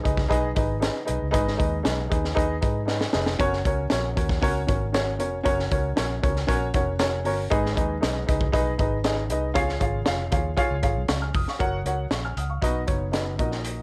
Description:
uptempo 1960s-style soul; 117 BPM; 4/4; straight; F# major; A4 = 440 Hz
dark upright piano; accompaniment; 0.0-13.8 s; G#2 to E#6; -28 LUFS; equal; plate reverb
vintage muted fingered electric bass; bass; 0.1-13.8 s; E#1 to G#2; -31 LUFS; equal
crunchy breakbeat drum kit; drums; 0.1-13.8 s; hi-hat, kick drum, snare drum; -29 LUFS; equal
light reverb; -25 LUFS; mono
0.0-11.6 A section; 11.6-13.8 B section
drum fill 2.9-3.4; upright piano fill 6.5-7.5
0.0 G#m; 3.4 F#; 7.5 G#m; 9.6 C#; 11.6 F#; 12.6 B

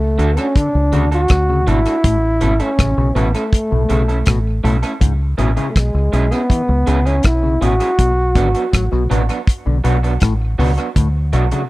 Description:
roots reggae; 81 BPM; 4/4; straight; A4 = 437 Hz
breathy trombone; melody; 0.0-9.1 s; G#3 to F#4; -18 LUFS; equal; tape echo
deep dub fingered electric bass; bass; 0.0-11.5 s; G#1 to D2; -16 LUFS; equal
electric guitar through a small old amp; accompaniment; 0.2-11.6 s; F#3 to A4; -24 LUFS; right 4 dB; tape echo
damped 70s drum kit; drums; 0.2-11.7 s; hi-hat, kick drum, rim click; -16 LUFS; equal
overdriven clav; arpeggios; 0.6-11.6 s; G#2 to F#3; -22 LUFS; left 4 dB; phaser
little or no reverb; dry, close 1970s-style studio recording; -13 LUFS; side -19 dB against mid
0.0-11.7 A section
0.0 D; 2.0 A; 5.0 C#m; 8.0 Bm

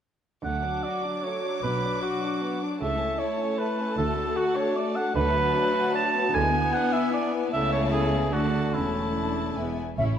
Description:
quick classical-period movement for symphony orchestra; 152 BPM; 3/4; straight; D major, A major from 5.2 s; A4 = 440 Hz
mellow cor anglais; second line; 0.4-9.8 s; E4 to A5; -27 LUFS; right 2 dB
rich chamber violin section; second line; 0.4-10.2 s; G#3 to F#4; -34 LUFS; left 3 dB
rich chamber viola section; accompaniment; 0.4-10.2 s; F#3 to C#4; -33 LUFS; equal
rich chamber cello section; bass; 0.4-10.2 s; E2 to D3; -32 LUFS; right 2 dB
rich chamber double bass section; bass; 0.4-10.2 s; E1 to D2; -32 LUFS; right 3 dB
rich chamber violin section; melody; 0.5-10.2 s; C#5 to D6; -37 LUFS; left 4 dB
mellow French horn section; sustained chords; 0.5-9.8 s; F#3 to F#4; -31 LUFS; left 4 dB
concert flute; second line; 10.0 s; E5; -27 LUFS; equal
timpani; percussion; 10.0-10.2 s; A2; -27 LUFS; equal
moderate scoring stage reverb, RT60 1.9 s; -23 LUFS; side -9 dB against mid
0.4-10.0 A section
0.4 D; 1.6 Bm; 2.8 A/C#; 4.0 D; 6.4 E7/D; 7.5 A/C#; 8.3 D; 8.8 A/E; 9.6 E

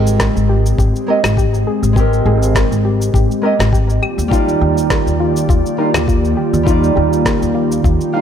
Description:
sunset chillout; 102 BPM; 4/4; swing 54% on 16ths; Ab lydian; A4 = 440 Hz
nylon-string guitar; accompaniment; 0.0-8.2 s; G3 to F5; -19 LUFS; right 3 dB; auto-pan, vintage 12-bit sampler grit, tape echo
airy breathy pad; sustained chords; 0.0-8.2 s; Eb3 to D5; -19 LUFS; equal; chorus
soft round pluck; arpeggios; 0.0-8.2 s; F4 to F5; -23 LUFS; left 4 dB; chorus, tape echo
upright bass; bass; 0.0-8.0 s; Ab1 to Eb2; -16 LUFS; equal
electronic shaker, snare drum and claves; drums; 0.1-8.1 s; -22 LUFS; equal
electronic kick drum; drums; 0.2-8.0 s; -16 LUFS; equal
light reverb; -12 LUFS; side -8 dB against mid
0.0-8.2 A section
0.0 Abmaj9; 4.0 Ebmaj9

